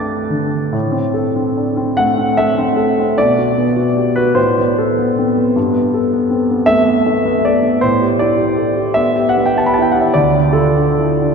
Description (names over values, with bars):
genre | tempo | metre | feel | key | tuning
classical, impressionist solo piano | 46-53 BPM (dotted quarters) | 6/8 | rubato | A dorian | A4 = 436 Hz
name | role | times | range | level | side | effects
warm grand piano | solo | 0.0-11.3 s | D2 to A6 | -12 LUFS | equal | none
room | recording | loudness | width
wet cathedral reverb, RT60 4.4 s | dark, warm production | -12 LUFS | side -5 dB against mid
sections
0.7-11.3 A section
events
none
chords
0.0 Gadd9; 0.7 Am; 3.2 Bm; 4.4 Amadd9; 5.6 Gadd9; 7.8 Asus2; 10.2 Dm